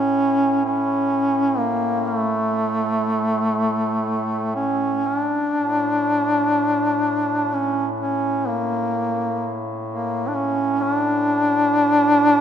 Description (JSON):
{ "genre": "caucasian folk, Caucasian lament", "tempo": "58-64 BPM", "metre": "3/4", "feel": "rubato", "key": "unclear", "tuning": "A4 = 440 Hz", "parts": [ { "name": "warm duduk", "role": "melody", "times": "0.0-12.4 s", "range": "A3 to D4", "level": "-19 LUFS", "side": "equal", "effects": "none" }, { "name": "warm duduk", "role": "drone", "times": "0.0-12.4 s", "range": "A2", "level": "-28 LUFS", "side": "equal", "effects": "none" } ], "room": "wet church reverb, RT60 3.5 s", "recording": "minimal, uncompressed stereo recording", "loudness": "-18 LUFS", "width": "side -9 dB against mid", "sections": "0.0-5.6 A section; 5.6-12.4 B section", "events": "none", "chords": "none", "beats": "0.64 1.59 | 2.55 3.53 4.54 | 5.56 6.56 7.52 | 8.47 9.40 10.35 | 11.29 12.25" }